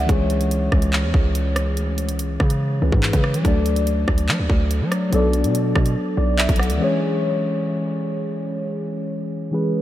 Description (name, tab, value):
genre	hip hop, drill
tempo	143 BPM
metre	4/4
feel	half-time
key	C# phrygian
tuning	A4 = 437 Hz
part	mellow tine electric piano	accompaniment	0.0-9.8 s	E3 to F#5	-22 LUFS	left 1 dB	phaser
part	hard-hitting 808-style bass	bass	0.0-6.8 s	B1 to F#3	-21 LUFS	equal	none
part	drill drum kit	drums	0.1-6.8 s	handclaps, hi-hat, kick drum, rim click	-23 LUFS	equal	none
room	moderate cathedral reverb, RT60 6.3 s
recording	dreamy mix soaked in reverb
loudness	-18 LUFS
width	side -13 dB against mid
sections	0.0-6.8 A section; 6.8-9.8 A section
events	none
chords	0.1 C#m; 3.4 D; 5.1 Bm7; 6.8 C#m